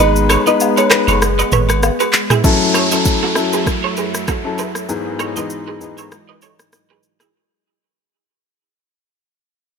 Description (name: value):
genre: afrobeats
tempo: 98 BPM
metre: 4/4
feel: swing 55% on 16ths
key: F# dorian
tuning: A4 = 436 Hz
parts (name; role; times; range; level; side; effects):
- mallet-like synth pluck; melody; 0.0-1.7 s; B4 to D#5; -19 LUFS; right 2 dB; chorus, tape echo
- warm grand piano; accompaniment; 0.0-6.1 s; G#2 to B4; -18 LUFS; left 5 dB; none
- lush unison pad; sustained chords; 0.0-7.3 s; F#2 to E4; -23 LUFS; equal; chorus
- punchy sub bass; bass; 0.0-1.9 s; F#1 to G#1; -17 LUFS; right 1 dB; none
- agogo bells and woodblock; percussion; 0.0-2.1 s; none; -22 LUFS; left 8 dB; none
- afro-pop drum kit; drums; 0.2-7.3 s; handclaps, kick drum, rim click, shaker, toms; -17 LUFS; equal; none
- electric guitar at the edge of break-up; riff; 0.3-7.3 s; E4 to E5; -22 LUFS; right 9 dB; analog chorus, tape echo
- downlifter; sound effects; 2.4-7.3 s; none; -21 LUFS; equal; none
room: light reverb, digital ambience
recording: none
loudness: -13 LUFS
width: side -6 dB against mid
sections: 0.0-2.4 A section; 2.4-7.3 B section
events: break 0.0-2.4; fade-out 2.4-7.3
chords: 0.0 G#m; 2.4 F#m7; 4.9 Emaj7/G#